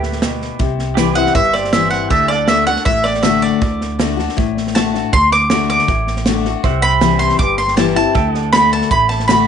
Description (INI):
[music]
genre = honky-tonk and classic country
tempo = 159 BPM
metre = 4/4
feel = straight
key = D mixolydian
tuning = A4 = 440 Hz
[part]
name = picked steel-string acoustic guitar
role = accompaniment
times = 0.0-9.5 s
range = G2 to F#4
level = -18 LUFS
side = left 10 dB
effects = none
[part]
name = pedal steel guitar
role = sustained chords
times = 0.0-9.5 s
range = G4 to G5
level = -26 LUFS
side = right 12 dB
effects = lush chorus
[part]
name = upright bass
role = bass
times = 0.0-9.5 s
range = G1 to D2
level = -22 LUFS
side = right 1 dB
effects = none
[part]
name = natural country drum kit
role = drums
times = 0.0-9.4 s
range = hi-hat, kick drum, snare drum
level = -20 LUFS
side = right 3 dB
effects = none
[part]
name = mandolin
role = melody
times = 1.2-9.5 s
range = D5 to D6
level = -15 LUFS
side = right 2 dB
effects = none
[sound]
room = moderate spring reverb, RT60 1.6 s, studio reverb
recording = 1960s-style stereo with parts hard left and right, nothing above 10.7 kHz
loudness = -12 LUFS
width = side -8 dB against mid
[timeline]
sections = 0.0-9.5 A section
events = mandolin solo 0.0-9.5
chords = 0.0 G; 0.6 C; 2.1 D; 6.6 C; 8.2 D